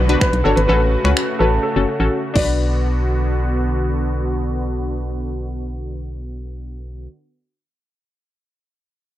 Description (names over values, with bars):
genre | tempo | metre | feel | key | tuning
dance-pop | 126 BPM | 4/4 | straight | B minor | A4 = 444 Hz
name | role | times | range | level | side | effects
warm grand piano | melody | 0.0-7.1 s | A4 to D5 | -22 LUFS | equal | low-pass filter, slapback echo
soft supersaw | sustained chords | 0.0-7.1 s | C#3 to F#4 | -25 LUFS | equal | sidechain pumping, low-pass filter
organ-like FM bass | bass | 0.0-7.1 s | F#1 to C#2 | -20 LUFS | equal | sidechain pumping
downlifter | sound effects | 0.0-2.6 s | none | -33 LUFS | right 1 dB | none
analog pluck | accompaniment | 0.1-7.1 s | C#4 to C#5 | -21 LUFS | left 4 dB | chorus, sidechain pumping, low-pass filter
pop drum kit | drums | 0.1-2.5 s | crash cymbal, finger snaps, hi-hat, kick drum | -20 LUFS | equal | none
room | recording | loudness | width
little or no reverb | dry, close 1970s-style studio recording | -17 LUFS | side -13 dB against mid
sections
0.0-2.6 A section; 2.6-6.4 B section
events
drums muted 2.1-2.6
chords
0.0 Bm; 0.7 F#m/A; 2.4 Bm